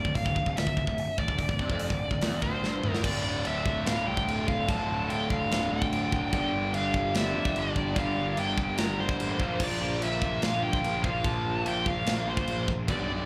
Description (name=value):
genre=heavy metal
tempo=146 BPM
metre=4/4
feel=straight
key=D minor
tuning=A4 = 436 Hz
part: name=high-gain lead guitar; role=melody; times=0.0-13.3 s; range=C5 to Bb5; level=-34 LUFS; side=equal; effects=distortion, slapback echo, delay
part: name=heavy high-gain guitar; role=riff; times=0.0-13.3 s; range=D2 to Bb3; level=-36 LUFS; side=equal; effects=distortion, slapback echo
part: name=tight distorted guitar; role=riff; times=0.0-13.3 s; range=D2 to Bb3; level=-40 LUFS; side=equal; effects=none
part: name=fuzz picked electric bass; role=bass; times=0.0-13.3 s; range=D1 to G2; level=-36 LUFS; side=equal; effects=overdrive
part: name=tight metal drum kit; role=drums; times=0.0-13.0 s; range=china cymbal, crash cymbal, hi-hat, kick drum, snare drum, toms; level=-34 LUFS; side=equal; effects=none
part: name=rich studio string section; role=sustained chords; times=3.0-13.3 s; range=D3 to B4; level=-42 LUFS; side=equal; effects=none
room=studio reverb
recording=live gig heard through the venue's PA, club reverb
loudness=-28 LUFS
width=mono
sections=0.0-3.0 A section; 3.0-13.3 B section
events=drum fill 2.6-3.0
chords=0.0 Dm; 6.3 Gm; 9.4 Bb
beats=0.15 0.56 0.98 | 1.39 1.80 2.21 2.62 | 3.04 3.45 3.86 4.27 | 4.68 5.09 5.50 5.91 | 6.32 6.73 7.14 7.55 | 7.96 8.37 8.78 9.19 | 9.61 10.02 10.43 10.84 | 11.24 11.65 12.06 12.47 | 12.88